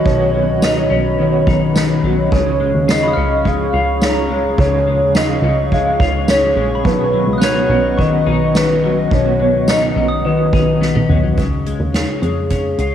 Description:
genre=dream pop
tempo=106 BPM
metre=4/4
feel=straight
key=B lydian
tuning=A4 = 440 Hz
part: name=mellow electric guitar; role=accompaniment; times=0.0-11.4 s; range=B2 to F#4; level=-24 LUFS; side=right 10 dB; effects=tremolo, ensemble chorus, cassette tape
part: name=warbly tape-like pad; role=sustained chords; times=0.0-12.9 s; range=F#4 to C#6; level=-23 LUFS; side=right 1 dB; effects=chorus, built-in reverb, cassette tape
part: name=semi-hollow electric guitar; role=arpeggios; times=0.0-12.9 s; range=B2 to E#4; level=-19 LUFS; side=left 6 dB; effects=analog chorus, cassette tape, tape echo
part: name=warbly nostalgic lead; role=melody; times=0.1-11.1 s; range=B4 to E#5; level=-18 LUFS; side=right 1 dB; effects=chorus, cassette tape, tape echo
part: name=plucky analog bass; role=bass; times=0.1-12.9 s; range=A#1 to E#2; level=-21 LUFS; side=right 1 dB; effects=none
part: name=soft-mallet drum kit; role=drums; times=0.1-12.9 s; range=hi-hat, kick drum, ride cymbal, snare drum, tambourine, toms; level=-20 LUFS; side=right 1 dB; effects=cassette tape
part: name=glockenspiel with soft plastic mallets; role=texture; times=3.0-10.8 s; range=A#5 to G#6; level=-28 LUFS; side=left 2 dB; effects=cassette tape, tape echo
room=wet booth ambience, RT60 0.2 s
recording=home recording on cassette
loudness=-13 LUFS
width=side -10 dB against mid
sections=0.0-11.4 A section; 11.4-12.9 B section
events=drum fill 10.8-11.4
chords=0.0 Badd9; 2.3 C#; 6.8 Badd9; 11.4 C#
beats=| 0.06 0.62 1.19 1.75 | 2.32 2.89 3.45 4.02 | 4.58 5.15 5.72 6.28 | 6.85 7.41 7.98 8.55 | 9.11 9.68 10.24 10.81 | 11.38 11.94 12.51

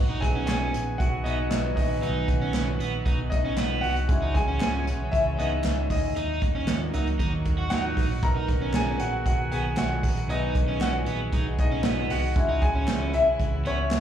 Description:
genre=piano-driven pop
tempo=116 BPM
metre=4/4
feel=straight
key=B major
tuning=A4 = 440 Hz
part: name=bright concert grand piano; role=accompaniment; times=0.0-14.0 s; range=F#3 to A#5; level=-28 LUFS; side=left 2 dB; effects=slapback echo
part: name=rich chamber string section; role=sustained chords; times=0.0-14.0 s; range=C#3 to G#4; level=-36 LUFS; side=equal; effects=none
part: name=vintage muted picked electric bass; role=bass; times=0.0-14.0 s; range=A#1 to D#2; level=-29 LUFS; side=equal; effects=none
part: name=crunchy overdriven guitar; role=riff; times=0.1-13.8 s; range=B3 to F#4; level=-33 LUFS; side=right 7 dB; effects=slapback echo
part: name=unplugged drum kit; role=drums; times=0.2-14.0 s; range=hi-hat, kick drum, snare drum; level=-27 LUFS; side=right 1 dB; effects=none
part: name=group handclap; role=percussion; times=0.5-14.0 s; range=none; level=-43 LUFS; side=right 1 dB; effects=none
room=light reverb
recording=live gig heard through the venue's PA, club reverb, studio reverb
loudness=-23 LUFS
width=side -10 dB against mid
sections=0.0-14.0 A section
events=grand piano solo 0.0-14.0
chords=0.0 B; 4.1 C#m; 6.2 D#m; 8.2 B; 12.4 C#m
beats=0.48 0.99 1.51 | 2.03 2.54 3.06 3.58 | 4.09 4.61 5.13 5.64 | 6.16 6.68 7.19 7.71 | 8.23 8.74 9.26 9.78 | 10.29 10.81 11.33 11.84 | 12.36 12.88 13.39 13.91

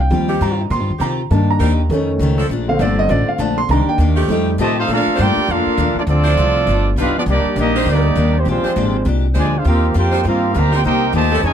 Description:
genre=jazz, big band swing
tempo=201 BPM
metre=4/4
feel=swing 61% on 8ths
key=Bb major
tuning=A4 = 439 Hz
part: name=warm concert grand piano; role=accompaniment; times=0.0-4.5 s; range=D3 to C6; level=-18 LUFS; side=right 1 dB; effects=none
part: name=upright bass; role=bass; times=0.0-11.5 s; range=G1 to C3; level=-17 LUFS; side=equal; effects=none
part: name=picked steel-string acoustic guitar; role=accompaniment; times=0.1-11.5 s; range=F2 to G4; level=-24 LUFS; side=left 7 dB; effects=none
part: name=clear saxophone section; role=sustained chords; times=0.3-11.4 s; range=F3 to C5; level=-24 LUFS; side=equal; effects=none
part: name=clear trumpet section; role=melody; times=4.6-11.5 s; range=Ab3 to Bb5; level=-18 LUFS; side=right 1 dB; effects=none
part: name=brilliant trombone section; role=second line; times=4.6-11.5 s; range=Bb2 to G4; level=-21 LUFS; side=right 2 dB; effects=none
room=light reverb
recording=none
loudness=-14 LUFS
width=side -9 dB against mid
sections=0.0-4.9 A section; 4.9-11.5 B section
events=grand piano solo 0.0-4.9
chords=0.1 Eb69; 1.3 Cm7; 1.9 Faug7; 2.5 Bbmaj7; 3.7 Cm7; 4.3 F9; 4.9 Bbmaj7; 6.1 Dm9; 6.7 G7b13; 7.3 Cm9; 8.5 Bb13; 9.7 Eb69; 10.8 Cm7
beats=| 0.11 0.41 0.71 1.01 | 1.31 1.60 1.90 2.20 | 2.50 2.80 3.10 3.39 | 3.69 3.99 4.29 4.59 | 4.89 5.18 5.48 5.78 | 6.08 6.38 6.67 6.97 | 7.27 7.57 7.87 8.17 | 8.46 8.76 9.06 9.36 | 9.66 9.95 10.25 10.55 | 10.85 11.15 11.44

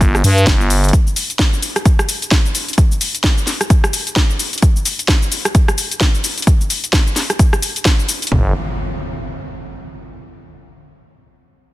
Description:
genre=bass house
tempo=130 BPM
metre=4/4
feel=swing 59% on 16ths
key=unclear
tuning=A4 = 435 Hz
part: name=growling FM bass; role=bass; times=0.0-0.9, 8.3-8.5 s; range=G1 to G2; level=-13 LUFS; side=equal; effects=tube saturation, sidechain pumping
part: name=house drum kit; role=drums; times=0.0-8.4 s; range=kick drum, toms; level=-13 LUFS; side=equal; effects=overdrive, studio reverb
part: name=house drum kit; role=drums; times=0.0-8.4 s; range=cabasa, hi-hat, rim click, snare drum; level=-17 LUFS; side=left 1 dB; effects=overdrive, studio reverb
part: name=impact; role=sound effects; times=8.3-10.2 s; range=none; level=-26 LUFS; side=equal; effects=none
room=little or no reverb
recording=dense, heavily limited modern master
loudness=-13 LUFS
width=side -17 dB against mid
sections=0.0-8.3 A section; 8.3-10.2 B section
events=none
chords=none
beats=0.01 0.47 | 0.93 1.39 1.85 2.32 | 2.78 3.24 3.70 4.16 | 4.62 5.09 5.55 6.01 | 6.47 6.93 7.39 7.86 | 8.32 8.78 9.24 9.70

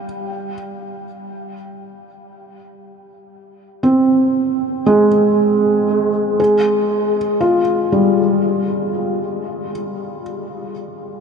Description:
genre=ambient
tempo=59 BPM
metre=4/4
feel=straight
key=unclear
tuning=A4 = 441 Hz
part: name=felt-muted upright piano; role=solo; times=0.0-11.2 s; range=G3 to G5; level=-15 LUFS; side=equal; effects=diffuse ambient delay
room=wet huge ambient reverb, RT60 8.1 s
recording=nothing above 10.4 kHz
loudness=-14 LUFS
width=side -6 dB against mid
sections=0.0-6.4 A section; 6.4-11.2 B section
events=none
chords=0.0 Fmadd9/G; 6.4 Fmadd9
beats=0.29 1.30 | 2.30 3.32 4.34 5.37 | 6.39 7.41 8.43 9.45 | 10.46

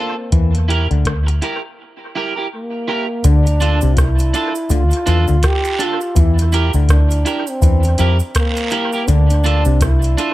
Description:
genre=roots reggae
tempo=82 BPM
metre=4/4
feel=swing 59% on 16ths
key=D minor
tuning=A4 = 440 Hz
part: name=dark trombone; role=melody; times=0.0-10.3 s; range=Bb3 to G4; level=-22 LUFS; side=equal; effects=tape echo
part: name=electric guitar at the edge of break-up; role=accompaniment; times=0.0-10.3 s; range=D4 to Bb4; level=-23 LUFS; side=right 4 dB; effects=lush chorus, tape echo
part: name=auto-wah clav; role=riff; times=0.3-9.9 s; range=C3 to F3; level=-24 LUFS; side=left 8 dB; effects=overdrive
part: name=vintage muted fingered electric bass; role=bass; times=0.3-10.2 s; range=C2 to F2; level=-14 LUFS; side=equal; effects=none
part: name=soft vintage rhythm box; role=drums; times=0.3-10.3 s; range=hi-hat, kick drum, rim click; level=-17 LUFS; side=equal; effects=none
part: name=cabasa and guiro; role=percussion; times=3.2-10.3 s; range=none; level=-29 LUFS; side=right 6 dB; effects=none
room=little or no reverb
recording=none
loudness=-13 LUFS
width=side -16 dB against mid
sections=0.0-3.2 A section; 3.2-10.3 B section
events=break 1.8-3.2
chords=0.3 Edim; 3.2 Dm; 6.2 Edim; 9.1 Dm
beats=| 0.32 1.05 1.78 2.51 | 3.24 3.97 4.70 5.43 | 6.16 6.89 7.62 8.35 | 9.08 9.81

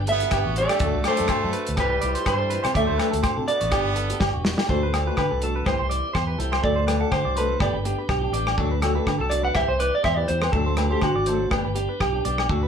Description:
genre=highlife guitar band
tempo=123 BPM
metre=4/4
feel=swing 55% on 16ths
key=D mixolydian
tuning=A4 = 440 Hz
part: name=semi-hollow electric guitar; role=melody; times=0.0-11.5 s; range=F#4 to F#5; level=-25 LUFS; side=right 2 dB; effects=none
part: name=bright trumpet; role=second line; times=0.0-4.4 s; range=G3 to B3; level=-31 LUFS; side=right 4 dB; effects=none
part: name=tonewheel organ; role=sustained chords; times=0.0-12.7 s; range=A3 to G4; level=-36 LUFS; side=equal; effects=slow rotary speaker, overdrive
part: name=fingered electric bass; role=bass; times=0.0-12.7 s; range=E1 to D3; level=-27 LUFS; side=equal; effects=none
part: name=flamenco guitar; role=accompaniment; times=0.1-12.7 s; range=E3 to A4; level=-29 LUFS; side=left 4 dB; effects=none
part: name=clean electric guitar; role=arpeggios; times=0.1-12.7 s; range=F#4 to F#5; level=-30 LUFS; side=right 4 dB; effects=none
part: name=warm soul drum kit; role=drums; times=0.1-12.6 s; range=hi-hat, kick drum, rim click, snare drum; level=-27 LUFS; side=equal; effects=none
part: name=agogo bells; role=percussion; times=0.3-12.5 s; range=none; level=-30 LUFS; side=left 3 dB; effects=none
room=moderate studio ambience, RT60 0.5 s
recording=band playing live in one room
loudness=-20 LUFS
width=side -7 dB against mid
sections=0.0-4.7 A section; 4.7-12.7 B section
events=drum fill 4.2-4.7; clean electric guitar solo 4.7-12.7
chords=0.0 G; 0.8 D; 1.8 C; 2.7 D; 3.7 G; 4.7 D; 5.7 C; 6.6 D; 7.6 G; 8.6 D; 9.6 C; 10.5 D; 11.5 G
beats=0.32 | 0.81 1.29 1.78 2.26 | 2.75 3.23 3.72 4.20 | 4.69 5.17 5.66 6.15 | 6.63 7.12 7.61 8.09 | 8.58 9.07 9.56 10.04 | 10.53 11.02 11.51 12.00 | 12.49

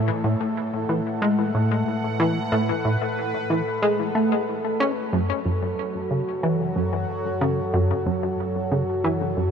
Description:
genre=ambient, sequencer-driven space music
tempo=92 BPM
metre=4/4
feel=straight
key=F# minor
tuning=A4 = 443 Hz
part: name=sweeping resonant pad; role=sustained chords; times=0.0-9.5 s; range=F#3 to F#5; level=-27 LUFS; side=equal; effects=chorus
part: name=plucky analog bass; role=riff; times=0.0-9.5 s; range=F#2 to C#4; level=-23 LUFS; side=equal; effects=lush chorus, ping-pong delay
part: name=analog drone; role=bass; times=0.0-9.5 s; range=F#2 to A2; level=-32 LUFS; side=equal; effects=chorus
room=moderate huge ambient reverb, RT60 8.5 s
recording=none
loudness=-21 LUFS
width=side -7 dB against mid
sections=0.0-9.5 A section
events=none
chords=0.0 A; 5.1 F#m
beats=0.56 1.22 1.87 | 2.52 3.17 3.82 4.48 | 5.13 5.78 6.43 7.08 | 7.74 8.39 9.04

